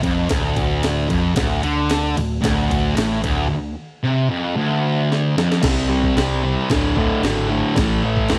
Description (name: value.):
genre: garage rock duo or trio.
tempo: 112 BPM.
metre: 4/4.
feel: straight.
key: unclear.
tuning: A4 = 441 Hz.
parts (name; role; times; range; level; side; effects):
thick fuzz guitar; riff; 0.0-8.4 s; D2 to C4; -21 LUFS; equal; distortion.
picked electric bass; bass; 0.0-8.4 s; D1 to D2; -26 LUFS; equal; overdrive.
breakbeat sampler-style drum kit; drums; 0.0-8.4 s; crash cymbal, kick drum, ride cymbal, snare drum; -25 LUFS; equal; none.
room: little or no reverb.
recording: none.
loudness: -19 LUFS.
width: mono.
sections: 0.0-5.6 A section; 5.6-8.4 B section.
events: drum fill 5.1-5.6.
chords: 0.0 D5; 5.6 C5; 6.7 D5; 7.8 A5.